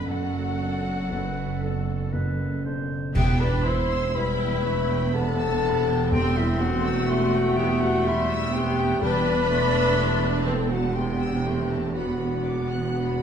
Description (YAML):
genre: cinematic, emotional film score for orchestra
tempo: 60 BPM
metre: 3/4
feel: rubato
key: E minor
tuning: A4 = 440 Hz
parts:
  - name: warm symphonic violin section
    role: melody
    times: 0.0-13.2 s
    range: E5 to C6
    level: -37 LUFS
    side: left 2 dB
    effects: none
  - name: warm symphonic violin section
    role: second line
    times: 0.0-13.2 s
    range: F#4 to F#6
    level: -37 LUFS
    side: left 1 dB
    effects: none
  - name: dark grand piano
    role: accompaniment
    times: 0.0-13.2 s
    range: F#1 to A4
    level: -31 LUFS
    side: left 1 dB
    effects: none
  - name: rich symphonic viola section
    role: accompaniment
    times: 0.0-13.2 s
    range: C3 to A4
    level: -32 LUFS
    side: right 2 dB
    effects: none
  - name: mellow French horn section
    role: sustained chords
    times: 0.0-13.2 s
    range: F#3 to C5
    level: -27 LUFS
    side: left 4 dB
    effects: none
  - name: rich symphonic double bass section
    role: bass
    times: 0.0-13.2 s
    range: E1 to F#1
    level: -29 LUFS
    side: right 4 dB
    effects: none
  - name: warm symphonic cello section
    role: bass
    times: 0.0-13.2 s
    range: E2 to F#2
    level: -32 LUFS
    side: right 3 dB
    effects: none
  - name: concert flute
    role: second line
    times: 0.1-13.2 s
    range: E5 to C6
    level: -34 LUFS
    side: equal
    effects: none
  - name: warm clarinet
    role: second line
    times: 1.1-13.2 s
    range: G3 to C5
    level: -33 LUFS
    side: left 2 dB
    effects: none
  - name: clash cymbals and concert bass drum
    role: percussion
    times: 3.1-5.1 s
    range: none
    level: -31 LUFS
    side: right 1 dB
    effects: none
  - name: timpani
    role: percussion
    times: 3.1-10.4 s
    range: E2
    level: -30 LUFS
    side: right 1 dB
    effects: none
room: wet recital hall reverb, RT60 1.6 s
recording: dark, warm production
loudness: -22 LUFS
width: side -8 dB against mid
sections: 0.0-3.1 A section; 3.1-13.2 B section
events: band accent 3.1-4.1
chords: 0.0 D6/F#; 3.1 Em; 6.1 C/E; 9.0 Am7/E; 12.0 Bm/E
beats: | 0.09 1.12 2.14 | 3.15 4.15 5.14 | 6.12 7.09 8.05 | 9.02 9.98 10.96 | 11.96 12.97